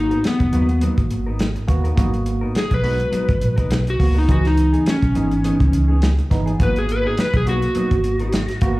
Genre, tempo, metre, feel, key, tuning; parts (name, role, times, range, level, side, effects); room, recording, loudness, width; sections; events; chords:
straight-eighth soul blues; 104 BPM; 4/4; swing 56% on 16ths; G# minor; A4 = 441 Hz
electric slide guitar; melody; 0.0-8.8 s; B3 to B4; -21 LUFS; left 1 dB
tine electric piano; accompaniment; 0.0-8.8 s; E3 to F#4; -26 LUFS; right 3 dB; medium stereo tremolo, slapback echo
vintage muted fingered electric bass; bass; 0.0-8.8 s; F#1 to D#2; -20 LUFS; equal
mellow electric guitar; stabs; 0.1-8.8 s; E3 to A#4; -29 LUFS; left 2 dB; slapback echo
warm soul drum kit; drums; 0.1-8.8 s; hi-hat, kick drum, snare drum; -20 LUFS; equal
small room ambience; live gig heard through the venue's PA, club reverb; -16 LUFS; side -19 dB against mid
0.0-8.8 A section
electric slide guitar solo 0.0-8.8
0.0 G#m9; 4.3 C#m9; 6.6 G#m9